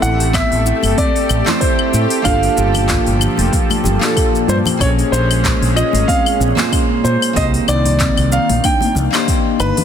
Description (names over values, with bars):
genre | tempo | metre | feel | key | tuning
sunset chillout | 94 BPM | 4/4 | swing 55% on 16ths | unclear | A4 = 441 Hz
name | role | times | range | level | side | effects
warm concert grand piano | melody | 0.0-9.8 s | B4 to G5 | -20 LUFS | equal | ping-pong delay
nylon-string guitar | accompaniment | 0.0-9.8 s | A3 to C5 | -21 LUFS | moving between left 8 dB and right 7 dB | auto-pan, tape echo
lush unison pad | sustained chords | 0.0-9.8 s | Bb2 to A4 | -21 LUFS | equal | chorus
soft round pluck | arpeggios | 0.0-9.8 s | B3 to A4 | -25 LUFS | right 3 dB | chorus, tape echo
mellow fretless electric bass | bass | 0.0-9.7 s | F1 to Bb2 | -17 LUFS | equal | lush chorus
deep house drum kit | drums | 0.0-9.8 s | claves, handclaps, hi-hat, shaker | -21 LUFS | left 3 dB | none
electronic kick drum | drums | 0.3-9.4 s | none | -19 LUFS | equal | none
congas | percussion | 0.8-9.8 s | none | -24 LUFS | left 5 dB | none
room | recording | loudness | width
light reverb | dense, heavily limited modern master | -12 LUFS | side -8 dB against mid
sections
0.0-9.8 A section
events
none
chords
0.0 Am9; 2.3 Gm9; 4.8 Bbm9; 7.4 Cm9